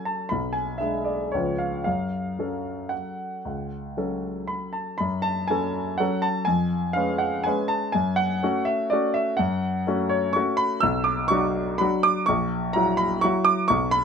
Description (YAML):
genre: classical, piano waltz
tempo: 111-132 BPM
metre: 3/4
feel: rubato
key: F# minor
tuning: A4 = 445 Hz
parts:
  - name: clear grand piano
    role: solo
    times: 0.0-14.0 s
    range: A#1 to E6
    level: -22 LUFS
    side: equal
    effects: none
room: light reverb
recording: close, detailed microphones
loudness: -22 LUFS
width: side -6 dB against mid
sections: 0.0-5.0 A section; 5.0-14.0 B section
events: none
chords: 0.3 G#dim/B; 1.3 C#7; 1.9 F#m; 6.5 C#7/E#; 7.9 F#m; 10.8 Bm; 12.3 F#7/A#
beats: | 0.32 0.81 1.33 | 1.86 2.38 2.92 | 3.44 3.96 4.49 | 5.00 5.49 5.99 | 6.47 6.96 7.46 | 7.94 8.42 8.91 | 9.39 9.87 10.36 | 10.83 11.30 11.80 | 12.28 12.75 13.23 | 13.70